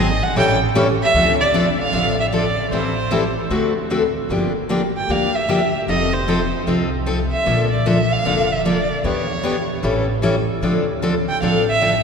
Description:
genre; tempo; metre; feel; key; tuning
acoustic string swing (jazz manouche); 152 BPM; 4/4; swing 62% on 8ths; D minor; A4 = 440 Hz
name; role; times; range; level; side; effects
warm violin; melody; 0.0-12.0 s; C5 to G5; -21 LUFS; right 1 dB; none
picked steel-string acoustic guitar; accompaniment; 0.0-11.9 s; D3 to A4; -19 LUFS; left 1 dB; none
upright bass; bass; 0.0-12.0 s; F1 to E2; -25 LUFS; equal; none
room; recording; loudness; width
wet cathedral reverb, RT60 6.3 s; recorded in a church or concert hall, lossy compression artefacts; -16 LUFS; side -6 dB against mid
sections
0.0-1.1 A section; 1.1-12.0 B section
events
violin solo 0.0-1.1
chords
0.4 A7; 1.1 Dm7; 2.7 Am7; 3.5 D7; 4.3 Gm7; 5.9 F7; 7.5 Bbmaj7; 9.0 Em7; 9.8 A7; 10.6 Dm7

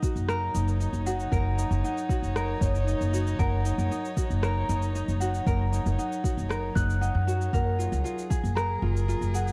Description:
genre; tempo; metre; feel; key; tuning
folktronica; 116 BPM; 4/4; straight; unclear; A4 = 440 Hz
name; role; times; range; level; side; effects
celesta; second line; 0.0-9.5 s; C#5 to F#6; -37 LUFS; equal; tape echo
rich string quartet; sustained chords; 0.0-9.5 s; F#3 to C#5; -38 LUFS; equal; none
tenor ukulele; arpeggios; 0.0-9.5 s; D#4 to A#4; -36 LUFS; equal; tape echo
electronic cabasa and rim click; drums; 0.0-9.5 s; none; -41 LUFS; equal; none
electronic kick drum; drums; 0.0-8.4 s; none; -30 LUFS; equal; none
upright bass; bass; 0.2-9.5 s; F#1 to F#2; -29 LUFS; equal; none
room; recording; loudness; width
light reverb; dark, warm production; -27 LUFS; mono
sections
0.0-9.5 A section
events
none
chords
0.0 D#m7/F#; 7.5 F#maj9

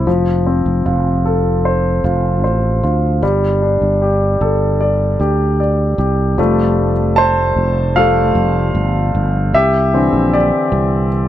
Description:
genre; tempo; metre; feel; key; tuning
pop; 76 BPM; 4/4; straight; F major; A4 = 443 Hz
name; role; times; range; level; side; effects
clear concert grand piano; accompaniment; 0.0-11.3 s; D3 to A5; -15 LUFS; left 1 dB; none
sustaining fretless electric bass; bass; 0.0-11.3 s; F1 to D2; -16 LUFS; right 1 dB; none
room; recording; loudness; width
little or no reverb; dry, close 1970s-style studio recording; -12 LUFS; side -12 dB against mid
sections
0.0-6.4 A section; 6.4-11.3 B section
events
grand piano solo 6.4-11.3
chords
0.1 F; 3.2 Gsus2; 6.4 Fadd9; 9.5 Cadd9

